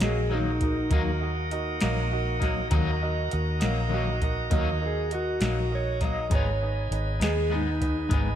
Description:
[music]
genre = slow blues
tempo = 67 BPM (dotted quarters)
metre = 12/8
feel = straight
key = Eb minor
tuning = A4 = 440 Hz
[part]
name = clean lap steel guitar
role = melody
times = 0.0-8.1 s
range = Eb4 to Eb5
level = -31 LUFS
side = equal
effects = none
[part]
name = bright baby grand piano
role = accompaniment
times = 0.0-8.3 s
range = Eb4 to F5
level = -33 LUFS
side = right 6 dB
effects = slapback echo
[part]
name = electric guitar at the edge of break-up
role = accompaniment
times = 0.0-8.3 s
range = Ab2 to Eb4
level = -34 LUFS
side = left 6 dB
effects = harmonic tremolo, slapback echo
[part]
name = bright tonewheel organ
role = sustained chords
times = 0.0-8.4 s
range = Bb3 to Bb4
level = -35 LUFS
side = right 1 dB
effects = stopped rotary speaker
[part]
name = vintage muted fingered electric bass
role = bass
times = 0.0-8.4 s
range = Ab1 to Eb2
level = -28 LUFS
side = equal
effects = none
[part]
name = soft vintage rhythm box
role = drums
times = 0.0-8.3 s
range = hi-hat, kick drum, snare drum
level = -29 LUFS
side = equal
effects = none
[sound]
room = light reverb, digital ambience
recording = none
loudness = -24 LUFS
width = side -10 dB against mid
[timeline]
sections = 0.0-8.4 A section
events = electric slide guitar solo 0.0-8.4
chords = 0.0 Ebm; 6.3 Abm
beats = 0.02 0.92 1.82 | 2.72 3.62 4.52 5.42 | 6.32 7.21 8.11

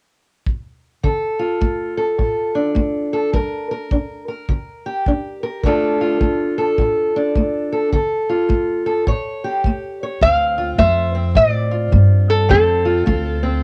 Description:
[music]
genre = acoustic country blues, solo or duo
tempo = 105 BPM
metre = 4/4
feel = swing 62% on 8ths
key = D minor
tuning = A4 = 440 Hz
[part]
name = kick drum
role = drums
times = 0.5-13.2 s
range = none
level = -22 LUFS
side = equal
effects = cassette tape
[part]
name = fingerpicked steel-string acoustic guitar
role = accompaniment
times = 1.0-13.6 s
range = A2 to C#5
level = -22 LUFS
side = equal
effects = cassette tape
[part]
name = lap resonator guitar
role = melody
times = 10.2-13.6 s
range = A4 to F5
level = -19 LUFS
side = equal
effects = cassette tape
[part]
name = upright bass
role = bass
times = 10.2-13.6 s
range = D2 to A2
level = -19 LUFS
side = equal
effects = none
[sound]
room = light reverb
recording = home recording on cassette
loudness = -18 LUFS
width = mono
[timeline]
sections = 0.0-1.0 A section; 1.0-10.2 B section; 10.2-13.6 C section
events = none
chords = 0.0 N.C.; 1.0 Dm; 3.3 Gm; 5.6 Dm; 9.1 A7; 10.2 Dm7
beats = 0.46 | 1.03 1.61 2.18 2.76 | 3.33 3.91 4.48 5.06 | 5.63 6.20 6.78 7.35 | 7.92 8.50 9.07 9.64 | 10.21 10.78 11.36 11.93 | 12.50 13.07

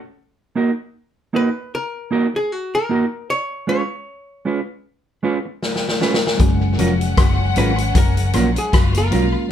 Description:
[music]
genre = lovers rock reggae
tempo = 77 BPM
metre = 4/4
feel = swing 57% on 16ths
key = F# major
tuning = A4 = 445 Hz
[part]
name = mellow electric guitar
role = stabs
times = 0.6-9.3 s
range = F#3 to B4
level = -20 LUFS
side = right 3 dB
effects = none
[part]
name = archtop guitar, miked and amplified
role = melody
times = 1.4-9.5 s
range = F#4 to C#5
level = -24 LUFS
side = left 1 dB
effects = none
[part]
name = vintage drum kit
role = drums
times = 5.6-9.3 s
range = hi-hat, kick drum, rim click, snare drum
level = -18 LUFS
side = left 1 dB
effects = none
[part]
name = warm studio string section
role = second line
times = 6.4-9.5 s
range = C#4 to F#5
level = -26 LUFS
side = left 2 dB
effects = none
[part]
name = mellow tine electric piano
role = accompaniment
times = 6.4-9.5 s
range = F#3 to E#4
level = -26 LUFS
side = right 2 dB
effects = phaser
[part]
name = electric guitar at the edge of break-up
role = riff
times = 6.4-9.3 s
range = E#3 to B3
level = -25 LUFS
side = left 2 dB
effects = tape echo
[part]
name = vintage muted fingered electric bass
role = bass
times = 6.4-9.3 s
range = E#1 to B1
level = -19 LUFS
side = left 1 dB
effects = none
[sound]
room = moderate studio reverb, RT60 0.5 s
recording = band playing live in one room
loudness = -17 LUFS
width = side -10 dB against mid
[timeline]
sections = 0.0-9.5 A section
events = drum fill 5.6-6.4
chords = 0.2 G#7sus2/A# (rootless); 3.3 C#7; 6.4 F#maj7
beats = | 0.17 0.94 1.72 2.50 | 3.28 4.06 4.84 5.62 | 6.40 7.17 7.95 8.73 | 9.51

